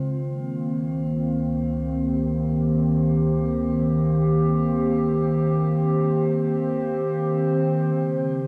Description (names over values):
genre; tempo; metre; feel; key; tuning
ambient; free time; none; none; unclear; A4 = 443 Hz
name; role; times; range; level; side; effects
warbly tape-like pad; sustained chords; 0.0-8.5 s; Db3 to C5; -23 LUFS; equal; chorus, built-in reverb, shimmer reverb
deep rumbling drone; bass; 0.9-7.9 s; Db2; -38 LUFS; equal; built-in reverb
room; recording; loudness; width
wet plate reverb, RT60 2.5 s; dreamy mix soaked in reverb; -23 LUFS; mono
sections
0.0-7.9 A section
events
fade-out on synth drone 0.0-7.9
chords
0.1 Cm7/Db; 7.9 Dbmaj7